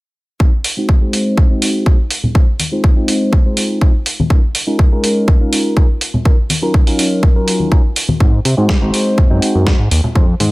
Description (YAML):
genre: filtered disco house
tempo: 123 BPM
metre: 4/4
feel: straight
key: unclear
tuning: A4 = 443 Hz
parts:
  - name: tine electric piano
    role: accompaniment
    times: 0.4-10.3 s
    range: Gb3 to C5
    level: -18 LUFS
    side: equal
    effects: phaser, sidechain pumping, low-pass filter
  - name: electronic kick drum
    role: drums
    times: 0.4-10.3 s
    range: none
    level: -11 LUFS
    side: equal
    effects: studio ambience
  - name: maracas and congas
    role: percussion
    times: 0.4-10.5 s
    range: none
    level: -18 LUFS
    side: left 1 dB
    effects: sidechain pumping on perc, low-pass filter on perc
  - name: dusty soul sampler-style drum kit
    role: drums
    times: 0.6-10.5 s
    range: hi-hat, snare drum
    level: -18 LUFS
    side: right 1 dB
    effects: sidechain pumping on hats, studio ambience
  - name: fat analog bass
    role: bass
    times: 8.2-10.5 s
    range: Ab1 to C3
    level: -14 LUFS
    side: equal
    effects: sidechain pumping, low-pass filter
room: little or no reverb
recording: none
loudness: -11 LUFS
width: side -22 dB against mid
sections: 0.4-10.5 A section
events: filter sweep 0.4-10.5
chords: 0.4 Ab7; 2.4 Fm7; 4.3 Db69; 6.0 Ebm9; 8.2 Ab7